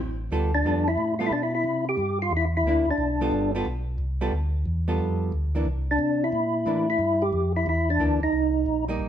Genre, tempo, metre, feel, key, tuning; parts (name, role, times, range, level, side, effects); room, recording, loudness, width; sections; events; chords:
soul jazz organ trio; 180 BPM; 4/4; swing 62% on 8ths; G mixolydian; A4 = 441 Hz
mellow tonewheel organ; bass; 0.0-9.1 s; G1 to C3; -27 LUFS; equal; slow rotary speaker
archtop guitar, miked and amplified; accompaniment; 0.3-9.1 s; E3 to A4; -29 LUFS; right 2 dB
percussive tonewheel organ; melody; 0.5-3.5, 5.9-8.8 s; D4 to G4; -24 LUFS; equal; slow rotary speaker, chorus vibrato
moderate stone room reverb, RT60 1.1 s; band playing live in one room; -22 LUFS; side -9 dB against mid
0.3-9.1 A section
0.3 G9; 1.7 C9; 3.0 G9; 5.7 C9; 8.3 Cm7